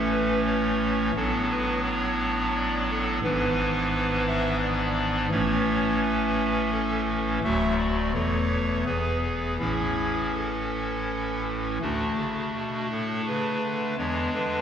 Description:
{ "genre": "classical, chorale-style piece for pipe organ", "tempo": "80-88 BPM", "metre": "3/4", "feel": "rubato", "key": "A major", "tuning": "A4 = 443 Hz", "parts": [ { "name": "pipe organ, clarinet reed", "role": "solo", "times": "0.0-14.6 s", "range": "D1 to E5", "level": "-23 LUFS", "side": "equal", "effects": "none" } ], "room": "wet scoring stage reverb, RT60 2.0 s", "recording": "heard from further back in the room", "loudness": "-23 LUFS", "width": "side -8 dB against mid", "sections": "0.0-11.8 A section; 11.8-14.6 B section", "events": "none", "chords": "0.0 A; 1.2 Bm7/A; 3.2 E7/G#; 5.3 A; 7.4 D; 8.1 A/E; 8.9 E; 9.6 A; 11.8 D; 14.0 E7", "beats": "0.47 | 1.16 1.85 2.55 | 3.23 3.92 4.61 | 5.32 6.01 6.72 | 7.43 8.14 8.86 | 9.60 10.35 11.09 | 11.83 12.55 13.28 | 13.99" }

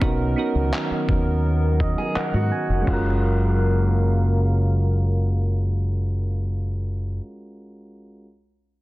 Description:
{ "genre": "contemporary R&B", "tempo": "84 BPM", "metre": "4/4", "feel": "straight", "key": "F# major", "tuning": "A4 = 440 Hz", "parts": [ { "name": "soft electric-piano-like synth keys", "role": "accompaniment", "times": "0.0-8.3 s", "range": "G#3 to G#5", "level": "-27 LUFS", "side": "right 2 dB", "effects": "chorus" }, { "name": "hollow soft pad", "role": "sustained chords", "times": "0.0-6.5 s", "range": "C#3 to E#5", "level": "-29 LUFS", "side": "left 1 dB", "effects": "chorus" }, { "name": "deep dub fingered electric bass", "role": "bass", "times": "0.0-7.2 s", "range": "E#1 to G#2", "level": "-21 LUFS", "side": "equal", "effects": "none" }, { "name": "dusty soul sampler-style drum kit", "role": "drums", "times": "0.0-3.0 s", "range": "crash cymbal, handclaps, kick drum", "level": "-26 LUFS", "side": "equal", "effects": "overdrive" }, { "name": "picked steel-string acoustic guitar", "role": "arpeggios", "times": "2.0-2.8 s", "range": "F#4 to A#4", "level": "-33 LUFS", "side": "right 1 dB", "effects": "tape echo" } ], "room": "digital ambience", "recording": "dense, heavily limited modern master, low-pass filter", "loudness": "-19 LUFS", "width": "side -18 dB against mid", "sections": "0.0-2.9 A section; 2.9-5.7 B section", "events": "synth keys fill 1.4-2.9", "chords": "0.0 Bmaj7; 2.9 F#maj7", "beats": "| 0.02 0.73 1.44 2.16 | 2.87 3.59 4.30 5.02" }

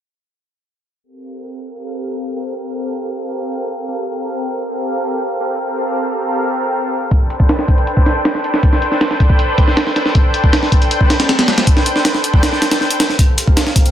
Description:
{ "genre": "drum and bass, jungle", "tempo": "158 BPM", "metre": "4/4", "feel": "straight", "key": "unclear", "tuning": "A4 = 440 Hz", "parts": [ { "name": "lush unison pad", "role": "sustained chords", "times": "1.0-13.9 s", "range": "C4 to G5", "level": "-19 LUFS", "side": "equal", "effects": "chorus" }, { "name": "breakbeat sampler-style drum kit", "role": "drums", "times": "7.1-13.9 s", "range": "hi-hat, kick drum, snare drum", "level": "-12 LUFS", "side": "equal", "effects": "studio reverb" }, { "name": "crunchy breakbeat drum kit", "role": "drums", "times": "13.2-13.9 s", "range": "hi-hat, snare drum", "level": "-27 LUFS", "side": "right 1 dB", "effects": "high-pass filter on hats, studio reverb, high-pass filter on snare, high-pass filter on room" } ], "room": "light reverb, studio reverb", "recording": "dense, heavily limited modern master, low-pass filter", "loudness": "-13 LUFS", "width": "side -10 dB against mid", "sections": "1.0-13.2 A section", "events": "filter sweep on analog synth pad 1.0-13.2; filter sweep 1.0-13.2; kick drops out 12.4-13.2", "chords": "1.0 Gm11; 7.1 Am11; 13.2 Gm11", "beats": "| 1.04 1.42 1.80 2.18 | 2.56 2.94 3.32 3.70 | 4.08 4.46 4.83 5.21 | 5.59 5.97 6.35 6.73 | 7.11 7.49 7.87 8.25 | 8.63 9.01 9.39 9.77 | 10.15 10.53 10.91 11.29 | 11.67 12.05 12.43 12.81 | 13.19 13.57" }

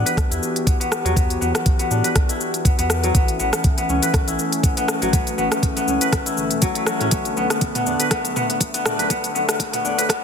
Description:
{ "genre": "afro house", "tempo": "121 BPM", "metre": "4/4", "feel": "swing 55% on 16ths", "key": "unclear", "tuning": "A4 = 440 Hz", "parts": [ { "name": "warm analog pad", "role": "sustained chords", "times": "0.0-10.2 s", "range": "D3 to C#5", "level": "-26 LUFS", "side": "left 1 dB", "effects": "chorus, vintage 12-bit sampler grit, sidechain pumping" }, { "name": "kora", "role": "arpeggios", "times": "0.0-10.2 s", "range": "F#3 to B4", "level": "-23 LUFS", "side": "left 1 dB", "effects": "sidechain pumping, low-pass filter, ping-pong delay" }, { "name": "round analog bass", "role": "bass", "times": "0.0-10.0 s", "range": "E1 to A2", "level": "-26 LUFS", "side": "equal", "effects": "sidechain pumping" }, { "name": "afro-pop drum kit", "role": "drums", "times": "0.1-10.2 s", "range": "hi-hat, rim click, shaker, toms", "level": "-23 LUFS", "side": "left 1 dB", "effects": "none" }, { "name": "electronic kick drum", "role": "drums", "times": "0.2-10.2 s", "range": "none", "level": "-19 LUFS", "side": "equal", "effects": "none" } ], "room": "light reverb, digital ambience", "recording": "dense, heavily limited modern master, high-pass filter", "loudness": "-17 LUFS", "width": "side -7 dB against mid", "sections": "0.0-10.2 A section", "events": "build-up 0.0-10.2; filter sweep 0.0-10.2", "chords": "0.0 Em7; 3.2 A; 7.1 Bm7", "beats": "0.18 0.67 | 1.17 1.66 2.16 2.65 | 3.15 3.65 4.14 4.64 | 5.13 5.63 6.13 6.62 | 7.12 7.61 8.11 8.61 | 9.10 9.60 10.09" }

